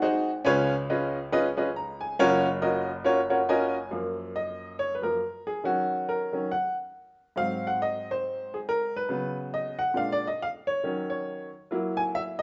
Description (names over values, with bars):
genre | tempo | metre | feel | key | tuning
gospel | 139 BPM | 4/4 | swing 57% on 8ths | F# major | A4 = 440 Hz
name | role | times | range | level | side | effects
clear upright piano | solo | 0.0-12.4 s | F#1 to A#5 | -28 LUFS | equal | none
room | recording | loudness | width
moderate large studio reverb, RT60 1.1 s | band playing live in one room, nothing above 7.9 kHz | -28 LUFS | mono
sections
0.0-3.9 A section; 3.9-12.4 B section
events
upright piano fill 3.0-3.9; upright piano solo 3.9-12.4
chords
0.5 C#7; 2.2 F#maj7; 5.6 D#m7; 7.4 G#7; 9.1 C#7sus4; 10.0 A#7; 10.8 D#m7; 11.7 F#7